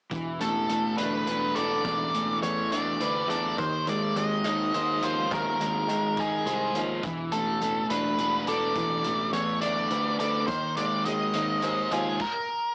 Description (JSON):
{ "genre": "indie rock", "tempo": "69 BPM (dotted quarters)", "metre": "6/8", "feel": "straight", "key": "unclear", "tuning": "A4 = 442 Hz", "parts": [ { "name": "crunchy overdriven guitar", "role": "riff", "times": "0.1-12.2 s", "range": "D#3 to B#4", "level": "-31 LUFS", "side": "equal", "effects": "cassette tape" }, { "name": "picked electric bass", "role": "bass", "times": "0.1-12.2 s", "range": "E1 to D#3", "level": "-37 LUFS", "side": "equal", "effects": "none" }, { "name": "loose indie drum kit", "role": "drums", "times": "0.1-12.3 s", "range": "crash cymbal, hi-hat, kick drum", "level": "-42 LUFS", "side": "equal", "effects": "cassette tape" }, { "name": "octave-fuzz lead guitar", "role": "melody", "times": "0.4-12.7 s", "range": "G#4 to D#5", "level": "-31 LUFS", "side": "equal", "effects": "distortion" } ], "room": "light reverb", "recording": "home recording on cassette, small speaker sound", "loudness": "-27 LUFS", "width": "mono", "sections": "0.1-12.7 A section", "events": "stop 12.2-12.7", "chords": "0.1 E7sus4; 3.6 G#6/D#; 7.0 E7sus4; 10.5 G#6/D#", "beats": "| 0.12 0.98 | 1.85 2.71 | 3.58 4.44 | 5.31 6.17 | 7.04 7.90 | 8.76 9.62 | 10.48 11.35 | 12.21" }